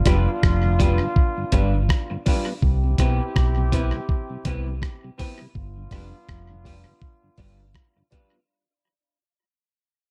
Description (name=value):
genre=roots reggae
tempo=82 BPM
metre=4/4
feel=swing 57% on 16ths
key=unclear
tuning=A4 = 437 Hz
part: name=bright trombone section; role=second line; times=0.0-8.1 s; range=B3 to G4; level=-33 LUFS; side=equal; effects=tape echo
part: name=fingered electric bass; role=bass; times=0.0-7.7 s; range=F1 to C2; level=-24 LUFS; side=equal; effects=none
part: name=electric guitar at the edge of break-up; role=accompaniment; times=0.1-8.3 s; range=G3 to B4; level=-34 LUFS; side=equal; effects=lush chorus, tape echo
part: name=mellow tonewheel organ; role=accompaniment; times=0.1-8.4 s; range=G2 to F4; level=-35 LUFS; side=equal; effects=chorus vibrato, slow rotary speaker
part: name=dark upright piano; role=stabs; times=0.1-8.3 s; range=C4 to B4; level=-33 LUFS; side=equal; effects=none
part: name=dusty soul sampler-style drum kit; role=drums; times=0.1-8.3 s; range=hi-hat, kick drum, rim click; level=-24 LUFS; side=equal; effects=overdrive
room=little or no reverb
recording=none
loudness=-22 LUFS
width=mono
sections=0.0-8.5 A section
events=fade-out 0.0-8.5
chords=0.0 G7; 2.6 Cmaj7; 5.6 G7